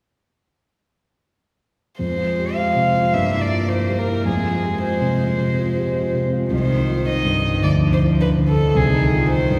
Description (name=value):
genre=quick classical-period movement for piano trio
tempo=106 BPM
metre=4/4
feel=straight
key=F minor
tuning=A4 = 439 Hz
part: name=rich violin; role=melody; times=2.0-9.6 s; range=Ab4 to F5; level=-24 LUFS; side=equal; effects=none
part: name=clear cello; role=second line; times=2.0-9.6 s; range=Eb3 to Bb3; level=-28 LUFS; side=equal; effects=none
part: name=dark concert grand piano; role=accompaniment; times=2.0-9.6 s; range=C2 to G4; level=-21 LUFS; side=equal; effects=none
room=wet church reverb, RT60 4.0 s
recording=heard from further back in the room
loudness=-19 LUFS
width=mono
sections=2.0-9.6 A section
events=none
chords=2.0 Fm; 3.1 Edim/G; 4.3 Fm; 6.5 Cm; 7.6 Dmadd9; 8.8 Cm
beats=| 2.00 2.57 3.13 3.70 | 4.26 4.83 5.40 5.96 | 6.53 7.09 7.65 8.21 | 8.77 9.33